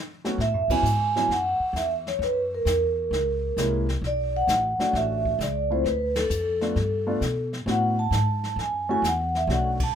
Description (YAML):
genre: jazz, small-group swing and bop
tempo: 132 BPM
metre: 4/4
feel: swing 67% on 8ths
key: A major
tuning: A4 = 441 Hz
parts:
  - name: warm grand piano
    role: accompaniment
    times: 0.2-9.8 s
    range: F#3 to F#4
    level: -29 LUFS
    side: left 1 dB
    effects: none
  - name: jazz brush drum kit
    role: drums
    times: 0.2-9.9 s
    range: brushed snare drum, hi-hat, kick drum, ride cymbal, snare drum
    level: -33 LUFS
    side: left 1 dB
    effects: none
  - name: vibraphone with soft mallets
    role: melody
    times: 0.4-9.9 s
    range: A4 to A5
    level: -24 LUFS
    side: right 1 dB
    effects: none
  - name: upright bass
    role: bass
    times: 0.4-9.9 s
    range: A1 to B2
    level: -28 LUFS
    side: left 1 dB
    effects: none
room: light reverb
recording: minimal, uncompressed stereo recording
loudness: -22 LUFS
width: side -8 dB against mid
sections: 0.4-9.9 A section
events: band accent 0.6, 6.1, 9.7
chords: 0.4 A6 (rootless); 2.2 F#7; 4.0 Bm7; 5.8 Dm; 6.8 G9; 7.7 A69; 8.6 F#m7